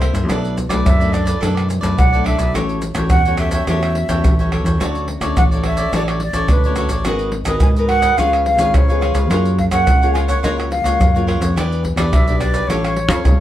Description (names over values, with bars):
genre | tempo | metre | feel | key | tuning
samba and choro | 106 BPM | 4/4 | straight | D major | A4 = 440 Hz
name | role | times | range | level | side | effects
mellow silver concert flute | melody | 0.0-13.4 s | B4 to G#5 | -19 LUFS | right 1 dB | none
cavaquinho | accompaniment | 0.0-13.4 s | D4 to G5 | -24 LUFS | right 1 dB | none
nylon-string guitar | accompaniment | 0.0-13.4 s | G2 to A#4 | -25 LUFS | left 3 dB | none
overdriven fingered electric bass | bass | 0.0-13.4 s | G#1 to G#2 | -20 LUFS | equal | none
pandeiro, tamborim, maracas and surdo | percussion | 0.0-13.4 s | none | -18 LUFS | equal | none
room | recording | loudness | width
moderate studio reverb, RT60 0.8 s | band playing live in one room | -14 LUFS | side -12 dB against mid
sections
0.0-13.4 A section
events
none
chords
0.3 Bm7; 2.6 A6; 4.8 Dmaj9; 7.1 G#m9; 8.2 C#7; 9.3 F#maj9; 11.6 Em7; 12.7 A7alt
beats
| 0.30 0.86 1.43 1.99 | 2.55 3.12 3.68 4.24 | 4.81 5.37 5.93 6.50 | 7.06 7.62 8.19 8.75 | 9.31 9.88 10.44 11.00 | 11.57 12.13 12.69 13.26